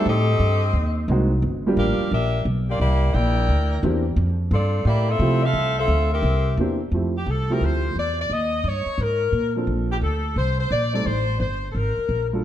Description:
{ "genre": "jazz, big band swing", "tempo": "175 BPM", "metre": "4/4", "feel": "swing 65% on 8ths", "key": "F major", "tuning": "A4 = 440 Hz", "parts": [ { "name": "bright saxophone section", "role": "melody", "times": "0.0-12.3 s", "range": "Bb3 to G5", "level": "-24 LUFS", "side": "left 2 dB", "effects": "none" }, { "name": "warm upright piano", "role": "accompaniment", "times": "0.0-12.4 s", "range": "E3 to A4", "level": "-25 LUFS", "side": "right 1 dB", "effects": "none" }, { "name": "upright bass", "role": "bass", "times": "0.1-12.4 s", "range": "G1 to C3", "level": "-22 LUFS", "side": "equal", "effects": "none" } ], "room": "light reverb", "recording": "dark, warm production", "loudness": "-19 LUFS", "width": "side -11 dB against mid", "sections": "0.0-6.9 A section; 6.9-12.4 B section", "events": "none", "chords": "0.1 Am7b5; 0.8 Ab9; 1.4 Gm7; 2.8 C9; 4.2 Fmaj7; 6.2 C7; 6.9 Fmaj7; 8.3 Eb7; 9.0 Abadd9; 9.7 Bbmaj9; 11.1 Gsus24; 11.8 Absus2" }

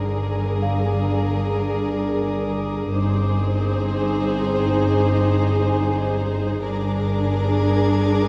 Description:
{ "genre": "cinematic", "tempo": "65 BPM", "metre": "4/4", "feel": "straight", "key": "unclear", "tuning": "A4 = 439 Hz", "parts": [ { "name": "warm chamber violin section", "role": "melody", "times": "0.0-8.3 s", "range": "Bb4 to C5", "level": "-34 LUFS", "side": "equal", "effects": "none" }, { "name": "warm chamber violin section", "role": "second line", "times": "0.0-8.3 s", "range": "Ab4", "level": "-35 LUFS", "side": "equal", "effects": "none" }, { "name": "dark chamber viola section", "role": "accompaniment", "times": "0.0-8.3 s", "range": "D3 to Eb4", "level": "-31 LUFS", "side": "equal", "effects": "none" }, { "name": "ethereal airy pad", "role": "sustained chords", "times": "0.0-8.3 s", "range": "D4 to D5", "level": "-35 LUFS", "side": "equal", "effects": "none" }, { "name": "mellow French horn section", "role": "sustained chords", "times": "0.0-8.3 s", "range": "C4 to Ab4", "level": "-28 LUFS", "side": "equal", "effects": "none" }, { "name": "clear chamber double bass section", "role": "bass", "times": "0.0-8.3 s", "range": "G1", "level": "-27 LUFS", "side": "equal", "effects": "none" }, { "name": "dark chamber cello section", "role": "bass", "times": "0.0-8.3 s", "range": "G2", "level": "-27 LUFS", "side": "equal", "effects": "none" }, { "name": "warm chamber violin section", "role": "texture", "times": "0.0-8.3 s", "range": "D6 to Ab6", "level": "-41 LUFS", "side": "equal", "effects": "none" }, { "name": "celesta", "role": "texture", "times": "0.6-8.3 s", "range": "D4 to D6", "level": "-37 LUFS", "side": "equal", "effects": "none" } ], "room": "light reverb", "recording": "dark, warm production", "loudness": "-21 LUFS", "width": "mono", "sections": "0.0-8.3 A section", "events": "none", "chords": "0.0 Bb7/G; 2.9 Abmaj7/G; 6.6 Bb7/G" }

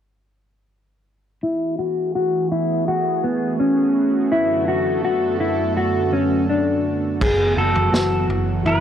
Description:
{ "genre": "dream pop", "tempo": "83 BPM", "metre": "4/4", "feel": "straight", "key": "unclear", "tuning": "A4 = 439 Hz", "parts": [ { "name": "lush unison pad", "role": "sustained chords", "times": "1.4-8.8 s", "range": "F#2 to A4", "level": "-24 LUFS", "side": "right 4 dB", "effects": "chorus, low-pass filter" }, { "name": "mellow electric guitar", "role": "arpeggios", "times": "1.4-8.8 s", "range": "B3 to G#4", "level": "-19 LUFS", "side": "left 2 dB", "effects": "wide subtle chorus, low-pass filter, tape echo" }, { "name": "vintage muted picked electric bass", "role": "bass", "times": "7.2-8.8 s", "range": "F#1", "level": "-23 LUFS", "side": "right 1 dB", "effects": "tube saturation" }, { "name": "vintage drum kit", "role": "drums", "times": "7.2-8.8 s", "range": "crash cymbal, kick drum, snare drum, toms", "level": "-24 LUFS", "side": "right 1 dB", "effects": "none" }, { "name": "pedal steel guitar", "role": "melody", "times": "7.6-8.8 s", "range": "A4 to B4", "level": "-22 LUFS", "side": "right 2 dB", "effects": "tape echo" } ], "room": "light reverb, small room ambience", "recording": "dry, gritty hardware recording", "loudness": "-17 LUFS", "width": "side -9 dB against mid", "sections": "1.4-7.2 A section; 7.2-8.8 B section", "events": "filter sweep 1.4-7.2", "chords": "1.4 F#m11; 4.3 D6/F#; 7.2 F#m11" }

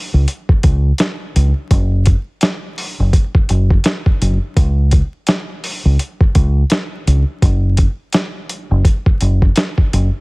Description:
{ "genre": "hip hop, boom-bap hip-hop", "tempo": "84 BPM", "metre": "4/4", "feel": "swing 58% on 16ths", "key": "unclear", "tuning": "A4 = 440 Hz", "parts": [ { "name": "deep dub fingered electric bass", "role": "bass", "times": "0.1-10.1 s", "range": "F#1 to C#2", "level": "-13 LUFS", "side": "equal", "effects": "none" }, { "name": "dusty soul sampler-style drum kit", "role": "drums", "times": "0.3-10.1 s", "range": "hi-hat, kick drum, snare drum", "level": "-14 LUFS", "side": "equal", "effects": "none" } ], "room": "little or no reverb", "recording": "heavily compressed radio sound, vinyl crackle", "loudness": "-12 LUFS", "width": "side -30 dB against mid", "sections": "0.0-10.2 A section", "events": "none", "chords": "none" }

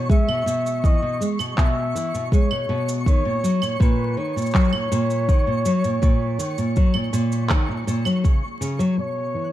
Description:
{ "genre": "folktronica", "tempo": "81 BPM", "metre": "4/4", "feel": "straight", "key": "unclear", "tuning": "A4 = 438 Hz", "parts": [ { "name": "breathy flugelhorn", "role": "melody", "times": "0.0-9.5 s", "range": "B4 to E5", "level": "-26 LUFS", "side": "equal", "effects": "digital delay" }, { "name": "nylon-string guitar", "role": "arpeggios", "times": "0.0-9.5 s", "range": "A#2 to G#3", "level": "-22 LUFS", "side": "equal", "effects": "vintage 12-bit sampler grit, low-pass filter" }, { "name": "twinkling granular texture", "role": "texture", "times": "0.0-9.5 s", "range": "C#6 to F#6", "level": "-35 LUFS", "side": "right 1 dB", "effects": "built-in reverb" }, { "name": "electronic cabasa, claves and handclaps", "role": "drums", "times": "0.1-9.5 s", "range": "none", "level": "-29 LUFS", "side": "right 2 dB", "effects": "low-pass filter on perc, low-pass filter on snare, low-pass filter on room" }, { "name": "electronic kick drum", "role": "drums", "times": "0.1-8.4 s", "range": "none", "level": "-18 LUFS", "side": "equal", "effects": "none" } ], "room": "digital ambience", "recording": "dark, warm production, vinyl crackle", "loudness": "-19 LUFS", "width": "side -13 dB against mid", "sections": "0.0-9.0 A section", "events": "none", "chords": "0.0 C#m7; 3.1 F#6; 9.0 C#m7" }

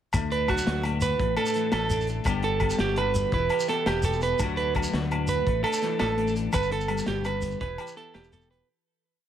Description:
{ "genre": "highlife guitar band", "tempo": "112 BPM (dotted quarters)", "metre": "12/8", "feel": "straight", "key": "D major", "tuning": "A4 = 444 Hz", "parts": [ { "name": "clean electric guitar", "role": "accompaniment", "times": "0.1-9.3 s", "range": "G2 to A4", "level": "-32 LUFS", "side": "left 10 dB", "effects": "analog chorus" }, { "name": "fingered electric bass", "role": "bass", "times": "0.1-8.6 s", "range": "E1 to D2", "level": "-30 LUFS", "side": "left 1 dB", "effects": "none" }, { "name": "crunchy breakbeat drum kit", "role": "drums", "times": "0.1-8.6 s", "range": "hi-hat, kick drum, snare drum", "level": "-32 LUFS", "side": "left 1 dB", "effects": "none" }, { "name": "agogo bells", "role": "percussion", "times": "0.1-8.3 s", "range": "none", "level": "-34 LUFS", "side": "left 3 dB", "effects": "none" }, { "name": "shekere", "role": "percussion", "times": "0.1-8.5 s", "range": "none", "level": "-33 LUFS", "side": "equal", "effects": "none" }, { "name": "electric guitar at the edge of break-up", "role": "arpeggios", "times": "0.3-8.7 s", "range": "F#4 to B4", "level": "-27 LUFS", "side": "right 6 dB", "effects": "spring reverb, tape echo" } ], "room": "light reverb", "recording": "none", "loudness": "-23 LUFS", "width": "side -10 dB against mid", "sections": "0.1-8.7 groove", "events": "fade-out 6.5-8.7", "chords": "0.1 D; 1.2 Asus4; 2.3 G; 3.3 Em; 4.4 D; 5.5 Asus4; 6.5 G; 7.6 Em" }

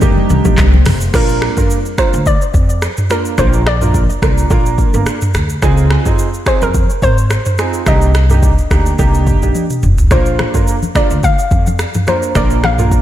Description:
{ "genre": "afrobeats", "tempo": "107 BPM", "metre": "4/4", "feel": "swing 55% on 16ths", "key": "Bb major", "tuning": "A4 = 440 Hz", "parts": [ { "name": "hollow square pluck", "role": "melody", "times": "0.0-13.0 s", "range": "Bb4 to F5", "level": "-19 LUFS", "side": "left 1 dB", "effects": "chorus, tape echo" }, { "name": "warm grand piano", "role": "accompaniment", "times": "0.0-13.0 s", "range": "Bb3 to Bb4", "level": "-19 LUFS", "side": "right 5 dB", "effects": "analog chorus" }, { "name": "glassy FM pad", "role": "sustained chords", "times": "0.0-1.1 s", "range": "C3 to C4", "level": "-20 LUFS", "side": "right 1 dB", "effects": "ensemble chorus, built-in reverb" }, { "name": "upright bass", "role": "bass", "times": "0.0-13.0 s", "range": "F1 to F2", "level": "-14 LUFS", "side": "equal", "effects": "none" }, { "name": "afro-pop drum kit", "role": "drums", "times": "0.0-13.0 s", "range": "crash cymbal, finger snaps, handclaps, hi-hat, kick drum, rim click, shaker, toms", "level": "-14 LUFS", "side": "equal", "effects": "overdrive" }, { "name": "congas", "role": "percussion", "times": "0.0-1.0, 10.1-12.8 s", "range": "none", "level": "-21 LUFS", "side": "left 4 dB", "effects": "none" } ], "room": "light reverb", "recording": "none", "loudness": "-10 LUFS", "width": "side -12 dB against mid", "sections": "0.0-1.1 A section; 1.1-13.0 B section", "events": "drum fill 9.6-10.1", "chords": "0.0 Cm7; 1.1 Bb; 5.6 Dbmaj7; 7.9 Cm7; 10.1 Bb" }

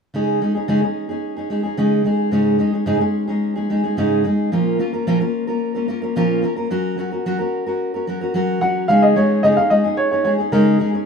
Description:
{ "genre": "pop", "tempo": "110 BPM", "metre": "4/4", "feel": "straight", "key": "Db major", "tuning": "A4 = 438 Hz", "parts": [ { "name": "fingerpicked steel-string acoustic guitar", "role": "accompaniment", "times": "0.1-11.1 s", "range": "Ab2 to Bb4", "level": "-17 LUFS", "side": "equal", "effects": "none" }, { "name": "warm upright piano", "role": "melody", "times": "8.6-11.1 s", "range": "Bb4 to Gb5", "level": "-17 LUFS", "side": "equal", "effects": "none" } ], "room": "moderate plate reverb, RT60 2.4 s", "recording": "minimal, uncompressed stereo recording", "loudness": "-16 LUFS", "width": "side -6 dB against mid", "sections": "0.1-8.9 A section; 8.9-11.1 B section", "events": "none", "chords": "0.1 Dbsus2; 2.3 Absus4; 4.5 Bbm; 6.7 Gb; 8.9 Dbsus2" }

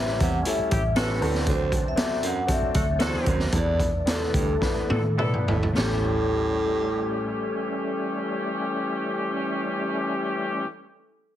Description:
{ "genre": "uptempo 1960s-style soul", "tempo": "101-119 BPM", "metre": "4/4", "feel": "straight", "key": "unclear", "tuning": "A4 = 438 Hz", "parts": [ { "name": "vibraphone with soft mallets", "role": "melody", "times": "0.0-10.7 s", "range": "A4 to F#5", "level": "-30 LUFS", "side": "left 1 dB", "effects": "plate reverb, tape echo" }, { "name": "clear concert grand piano", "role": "accompaniment", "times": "0.0-10.7 s", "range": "A3 to C5", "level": "-33 LUFS", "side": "left 5 dB", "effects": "plate reverb" }, { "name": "bright tonewheel organ", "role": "sustained chords", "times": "0.0-10.7 s", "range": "E3 to D4", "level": "-33 LUFS", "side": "right 1 dB", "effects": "fast rotary speaker, chorus vibrato, plate reverb" }, { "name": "vintage muted fingered electric bass", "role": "bass", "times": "0.0-10.7 s", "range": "G#1 to A2", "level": "-28 LUFS", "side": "equal", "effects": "none" }, { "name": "raw garage drum kit", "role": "drums", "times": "0.1-5.9 s", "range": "hi-hat, kick drum, snare drum, splash cymbal, toms", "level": "-26 LUFS", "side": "equal", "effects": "none" }, { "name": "breathy baritone saxophone", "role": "riff", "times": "0.2-7.5 s", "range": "D2 to C3", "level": "-29 LUFS", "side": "right 4 dB", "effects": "none" }, { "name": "dark horn section", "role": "second line", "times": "0.7-10.7 s", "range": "E3 to A4", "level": "-30 LUFS", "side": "left 1 dB", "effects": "plate reverb" } ], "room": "light reverb", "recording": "heavily compressed radio sound", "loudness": "-22 LUFS", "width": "side -11 dB against mid", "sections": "0.0-5.8 A section; 5.8-10.5 B section", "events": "slowing down 1.5-5.8; drum fill 4.6-5.8", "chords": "0.0 A7; 1.2 D7; 3.5 E7sus4; 5.8 A7" }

